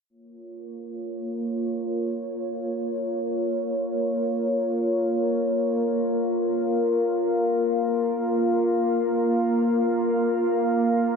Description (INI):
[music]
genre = drum and bass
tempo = free time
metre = none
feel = none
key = Bb minor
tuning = A4 = 441 Hz
[part]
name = bowed-like drone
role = sustained chords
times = 0.5-11.2 s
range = Bb3 to F5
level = -22 LUFS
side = equal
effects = built-in reverb, vintage 12-bit sampler grit
[sound]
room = moderate lush hall reverb, RT60 2.7 s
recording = dense, heavily limited modern master, low-pass filter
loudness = -22 LUFS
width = side -5 dB against mid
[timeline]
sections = 0.1-11.2 A section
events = filter sweep 0.1-11.2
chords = 0.1 Bbm